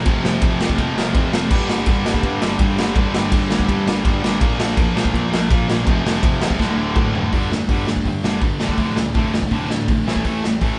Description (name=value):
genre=punk rock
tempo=165 BPM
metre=4/4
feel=straight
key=unclear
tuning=A4 = 440 Hz
part: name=overdriven electric guitar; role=riff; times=0.0-10.8 s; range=D2 to Bb3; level=-29 LUFS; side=equal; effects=none
part: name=sludgy distorted guitar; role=riff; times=0.0-10.8 s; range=D2 to Bb3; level=-26 LUFS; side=equal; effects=overdrive
part: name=tight distorted guitar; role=riff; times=0.0-10.8 s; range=D2 to Bb3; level=-28 LUFS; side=equal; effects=distortion
part: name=fuzz picked electric bass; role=bass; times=0.0-10.8 s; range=D1 to Bb2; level=-30 LUFS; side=equal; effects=none
part: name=raw garage drum kit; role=drums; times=0.1-10.7 s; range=crash cymbal, hi-hat, kick drum, ride cymbal, snare drum, toms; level=-21 LUFS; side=equal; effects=none
room=little or no reverb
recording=band playing live in one room, nothing above 10.6 kHz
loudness=-19 LUFS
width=mono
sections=0.0-7.3 A section; 7.3-10.8 B section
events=drum fill 6.6-7.3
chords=0.1 F5; 1.5 G5; 4.4 Bb5; 5.9 F5; 6.6 D5; 7.3 G5; 8.6 Dm/F; 10.1 A5